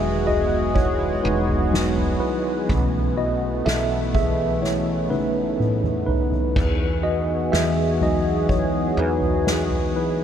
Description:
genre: pop ballad.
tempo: 62 BPM.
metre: 4/4.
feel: straight.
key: E major.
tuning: A4 = 438 Hz.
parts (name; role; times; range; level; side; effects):
mellow tine electric piano; accompaniment; 0.0-10.2 s; D#3 to E5; -24 LUFS; right 1 dB; medium stereo tremolo.
chorused pulse-width pad; sustained chords; 0.0-10.2 s; E3 to G#4; -25 LUFS; equal; none.
woody fretless electric bass; bass; 0.0-9.9 s; E1 to E2; -27 LUFS; equal; lush chorus.
soft-mallet drum kit; drums; 0.3-9.9 s; crash cymbal, kick drum, snare drum, toms; -25 LUFS; equal; none.
room: moderate huge ambient reverb, RT60 8.3 s.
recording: dreamy mix soaked in reverb.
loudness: -19 LUFS.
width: side -9 dB against mid.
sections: 0.0-10.2 A section.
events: tine electric piano solo 0.0-10.2; drum fill 4.6-6.6.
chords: 0.0 Emaj7; 2.7 B7sus4; 6.6 Emaj7.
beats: 0.75 1.72 | 2.69 3.65 4.62 5.59 | 6.56 7.52 8.49 9.46.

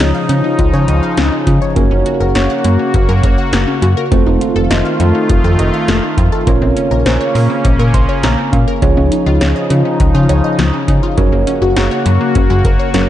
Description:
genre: synth-pop.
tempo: 102 BPM.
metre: 4/4.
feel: straight.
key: Db major.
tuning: A4 = 440 Hz.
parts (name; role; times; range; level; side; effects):
tine electric piano; accompaniment; 0.0-13.1 s; C4 to C6; -20 LUFS; right 6 dB; none.
sweeping resonant pad; sustained chords; 0.0-13.1 s; Db3 to Gb4; -17 LUFS; left 1 dB; chorus.
wide unison pluck; arpeggios; 0.0-13.1 s; F3 to Gb5; -20 LUFS; left 3 dB; auto-pan, slapback echo.
slap-like FM bass; bass; 0.0-13.1 s; F1 to Db3; -14 LUFS; equal; none.
electro analog drum machine; drums; 0.0-13.1 s; hi-hat, kick drum, snare drum; -16 LUFS; equal; none.
room: light reverb.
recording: dark, warm production, nothing above 10.3 kHz.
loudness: -10 LUFS.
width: side -12 dB against mid.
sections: 0.0-13.1 A section.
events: tine electric piano fill 7.6-8.8.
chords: 0.0 Dbadd9; 1.8 Gb; 4.1 F7; 6.5 Bbmadd9; 8.8 Dbadd9; 11.2 Gb.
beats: 0.00 0.59 1.18 | 1.76 2.35 2.94 3.53 | 4.12 4.71 5.29 5.88 | 6.47 7.06 7.65 8.23 | 8.82 9.41 10.00 10.59 | 11.18 11.76 12.35 12.94.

